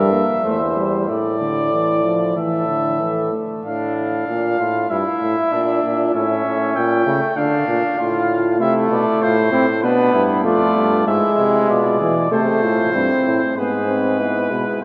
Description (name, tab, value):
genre	classical, imitative canzona for brass ensemble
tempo	96 BPM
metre	4/4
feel	straight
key	unclear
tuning	A4 = 440 Hz
part	mellow trumpet	melody	0.0-14.8 s	B4 to G5	-24 LUFS	equal	none
part	mellow flugelhorn	second line	0.0-14.8 s	A3 to D5	-25 LUFS	equal	none
part	warm trombone	accompaniment	0.0-3.6, 8.6-14.8 s	D3 to C4	-22 LUFS	equal	none
part	clear euphonium	bass	0.0-14.7 s	E2 to D3	-24 LUFS	equal	none
room	wet cathedral reverb, RT60 4.5 s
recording	none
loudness	-18 LUFS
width	mono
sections	0.0-3.7 A section; 3.7-13.6 B section; 13.6-14.8 A section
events	none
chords	0.0 Edim/G; 1.1 Asus4; 2.4 A5; 3.7 Dm/A; 4.9 E(b5, no3); 6.1 A; 7.4 Dm; 8.6 Am; 9.8 Bdim; 11.1 E/G#; 12.3 Am; 13.6 E/G#